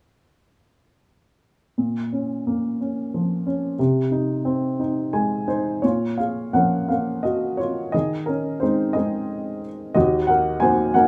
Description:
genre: classical, lyrical solo piano.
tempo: 59 BPM (dotted quarters).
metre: 6/8.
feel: uneven beats, rubato.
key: Bb minor.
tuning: A4 = 439 Hz.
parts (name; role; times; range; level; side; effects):
dark baby grand piano; solo; 1.8-11.1 s; Eb2 to Ab5; -22 LUFS; equal; none.
room: light reverb.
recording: small room ambience.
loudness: -23 LUFS.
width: mono.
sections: 1.8-5.8 A section; 5.8-11.1 B section.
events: grand piano fill 4.8-5.8.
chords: 1.8 Bbm; 3.8 Ab/C; 5.8 Bbm; 7.9 Ab; 10.0 Ebm.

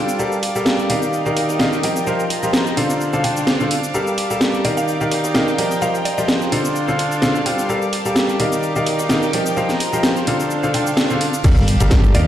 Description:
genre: piano house.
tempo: 128 BPM.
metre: 4/4.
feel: swing 54% on 16ths.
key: G minor.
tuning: A4 = 441 Hz.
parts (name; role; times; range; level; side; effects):
dark chamber violin section; sustained chords; 0.0-12.3 s; D4 to G6; -27 LUFS; right 2 dB; sidechain pumping, low-pass filter.
bright baby grand piano; riff; 0.0-12.3 s; D3 to G5; -19 LUFS; equal; sidechain pumping, tape echo.
rich chamber string section; texture; 0.0-12.3 s; D4 to D6; -27 LUFS; right 1 dB; sidechain pumping.
house drum kit; drums; 0.1-12.2 s; cabasa, crash cymbal, hi-hat, snare drum; -21 LUFS; equal; overdrive.
breakbeat sampler-style drum kit; drums; 0.2-12.3 s; hi-hat, shaker, snare drum; -35 LUFS; equal; none.
mallet-like synth pluck; melody; 4.6-6.2, 12.1-12.2 s; D5 to F5; -26 LUFS; right 1 dB; chorus, tape echo.
modern bright fingered electric bass; bass; 11.4-12.3 s; G1 to Eb2; -16 LUFS; equal; sidechain pumping.
electronic kick drum; drums; 11.4-12.0 s; none; -14 LUFS; equal; overdrive.
impact; sound effects; 11.5-12.3 s; none; -20 LUFS; equal; none.
room: wet lush hall reverb, RT60 1.9 s, digital ambience.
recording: played on a big sound system in a bare room, stone room reverb.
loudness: -16 LUFS.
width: side -11 dB against mid.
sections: 0.0-11.4 A section.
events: filter sweep on violin section 0.0-11.4; impact 11.4-12.3.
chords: 0.2 Gm9; 0.9 Ebmaj9; 2.1 F9sus4; 2.8 Dm7; 3.9 Gm9; 4.6 Ebmaj9; 5.8 F9sus4; 6.5 Dm7; 7.7 Gm9; 8.4 Ebmaj9; 9.6 F9sus4; 10.3 Dm7; 11.4 Gm9.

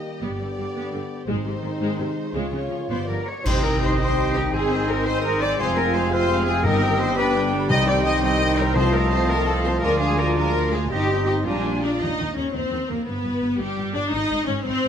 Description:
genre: cinematic, heroic adventure film score.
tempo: 113 BPM (dotted quarters).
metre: 6/8.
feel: straight.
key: C minor from 3.5 s.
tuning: A4 = 438 Hz.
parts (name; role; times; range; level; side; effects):
warm symphonic violin section; melody; 0.0-14.9 s; G4 to B5; -34 LUFS; left 2 dB; none.
warm symphonic violin section; second line; 0.0-14.9 s; D4 to Eb5; -30 LUFS; left 3 dB; none.
clear French horn section; sustained chords; 0.0-11.8 s; Bb3 to G4; -30 LUFS; left 4 dB; none.
warm trombone section; sustained chords; 0.0-11.8 s; C3 to C4; -31 LUFS; right 3 dB; none.
clear symphonic viola section; accompaniment; 0.2-14.9 s; C3 to C5; -27 LUFS; left 1 dB; none.
clear symphonic double bass section; bass; 0.2-14.9 s; F1 to Eb2; -27 LUFS; right 2 dB; none.
warm symphonic cello section; bass; 0.2-14.9 s; G2 to Eb5; -27 LUFS; equal; none.
cymbal swell, clash cymbals and concert bass drum; percussion; 1.3-4.1 s; none; -28 LUFS; equal; none.
clear clarinet; second line; 3.5-11.8 s; C4 to F4; -31 LUFS; left 2 dB; none.
silver concert flute; second line; 3.5-11.8 s; G5 to C6; -31 LUFS; left 2 dB; none.
warm oboe; second line; 3.5-11.7 s; C5 to Ab5; -30 LUFS; right 2 dB; none.
timpani; percussion; 6.6-9.3 s; G2 to C3; -26 LUFS; left 1 dB; none.
room: moderate scoring stage reverb, RT60 1.5 s.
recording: none.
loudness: -20 LUFS.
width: side -8 dB against mid.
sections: 0.0-3.5 A section; 3.5-12.0 B section; 12.0-14.9 C section.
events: band accent 3.5-3.8.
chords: 0.2 G; 1.3 Ab; 2.3 Db; 2.9 G7; 3.5 Cm; 4.5 Ab; 5.6 Fm; 6.6 Cm/G; 7.2 G; 7.7 Cm; 8.8 F/C; 9.8 Ddim; 10.9 Cm/G; 11.5 Bb7; 12.0 Cm7/Eb; 13.1 G; 14.1 Ab.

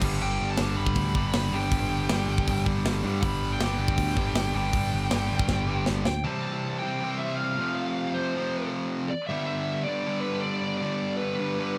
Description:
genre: punk rock.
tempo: 158 BPM.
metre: 4/4.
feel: straight.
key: G mixolydian.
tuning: A4 = 440 Hz.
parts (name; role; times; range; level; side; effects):
sludgy distorted guitar; riff; 0.0-11.8 s; G2 to G4; -34 LUFS; equal; overdrive.
tight distorted guitar; riff; 0.0-11.8 s; F2 to C4; -35 LUFS; equal; distortion.
modern bright picked electric bass; bass; 0.0-6.2 s; G1 to G2; -32 LUFS; equal; none.
tight metal drum kit; drums; 0.0-6.1 s; crash cymbal, hi-hat, kick drum, snare drum; -31 LUFS; equal; none.
high-gain lead guitar; melody; 0.2-11.7 s; B4 to B5; -34 LUFS; equal; distortion.
room: light reverb.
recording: none.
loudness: -27 LUFS.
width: mono.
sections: 0.0-6.3 A section; 6.3-11.8 B section.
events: drum fill 5.5-6.3.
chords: 0.0 G; 6.3 C; 7.6 F; 9.3 G.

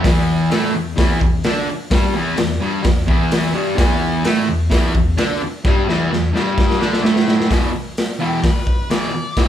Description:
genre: garage rock duo or trio.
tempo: 129 BPM.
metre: 4/4.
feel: straight.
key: unclear.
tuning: A4 = 435 Hz.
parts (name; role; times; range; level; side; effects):
fuzz guitar; riff; 0.0-9.5 s; E2 to D4; -18 LUFS; equal; distortion.
raw garage drum kit; drums; 0.0-9.5 s; hi-hat, kick drum, snare drum; -18 LUFS; equal; none.
octave-fuzz lead guitar; melody; 8.2-9.5 s; G4 to E5; -26 LUFS; left 3 dB; distortion.
room: moderate large studio reverb, RT60 0.8 s.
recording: band playing live in one room.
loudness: -15 LUFS.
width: side -10 dB against mid.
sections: 0.0-7.5 A section; 7.5-9.5 B section.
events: drum fill 5.6-7.5; lead electric guitar solo 7.5-9.5.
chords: 0.0 Emadd11; 7.5 E5.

